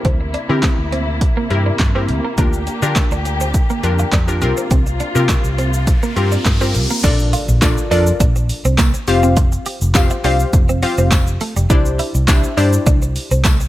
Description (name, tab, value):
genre	dance-pop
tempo	103 BPM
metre	4/4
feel	straight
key	unclear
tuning	A4 = 440 Hz
part	glassy wavetable pluck	accompaniment	0.0-13.3 s	C4 to F5	-20 LUFS	left 2 dB	chorus, sidechain pumping
part	muted studio string section	sustained chords	0.0-7.0 s	C3 to G4	-25 LUFS	left 2 dB	sidechain pumping
part	vintage muted fingered electric bass	bass	0.0-13.7 s	F1 to D3	-18 LUFS	equal	sidechain pumping
part	punchy analog drum machine	drums	0.0-13.7 s	crash cymbal, handclaps, hi-hat, kick drum, shaker, snare drum	-16 LUFS	equal	none
part	twelve-string electric guitar	riff	0.1-13.6 s	G3 to G4	-24 LUFS	right 3 dB	analog chorus
part	riser and impact	sound effects	5.8-9.4 s	none	-26 LUFS	equal	none
part	tambourine	percussion	7.6-13.6 s	none	-31 LUFS	left 7 dB	none
room	little or no reverb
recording	none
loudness	-13 LUFS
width	side -15 dB against mid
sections	0.0-7.0 A section; 7.0-13.7 B section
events	riser 5.8-7.0; impact 7.0-9.4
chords	0.0 C7/D; 2.4 Bb6/D; 4.4 C7sus4; 7.0 Bbmaj7; 9.1 Fsus2; 11.7 Cadd9